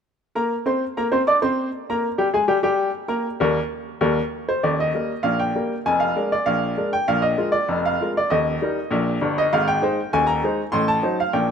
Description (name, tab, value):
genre	ragtime piano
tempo	98 BPM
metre	2/4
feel	straight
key	Eb major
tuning	A4 = 439 Hz
part	bright upright piano	solo	0.4-11.5 s	Eb1 to D6	-19 LUFS	equal	none
room	moderate plate reverb, RT60 3.4 s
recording	minimal, uncompressed stereo recording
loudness	-19 LUFS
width	side -7 dB against mid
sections	0.0-4.6 A section; 4.6-11.5 B section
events	none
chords	0.0 Eb (rootless); 4.6 Eb; 5.9 Bb7/F; 7.1 Bb5; 8.3 Eb; 9.5 Ab; 10.7 Adim7